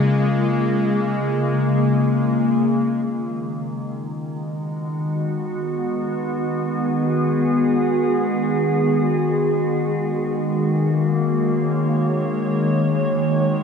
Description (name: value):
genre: ambient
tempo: free time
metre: none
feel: none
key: G# dorian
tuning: A4 = 436 Hz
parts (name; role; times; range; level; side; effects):
- glassy FM pad; sustained chords; 0.0-13.6 s; C#3 to C#5; -18 LUFS; left 1 dB; ensemble chorus, built-in reverb
- bowed-like drone; drone; 0.0-13.6 s; G#3; -29 LUFS; left 1 dB; built-in reverb
room: wet lush hall reverb, RT60 2.8 s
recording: none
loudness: -18 LUFS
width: side -6 dB against mid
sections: 0.0-3.1 A section; 3.1-13.6 B section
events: none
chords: 0.0 C#; 3.1 G#m7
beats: free time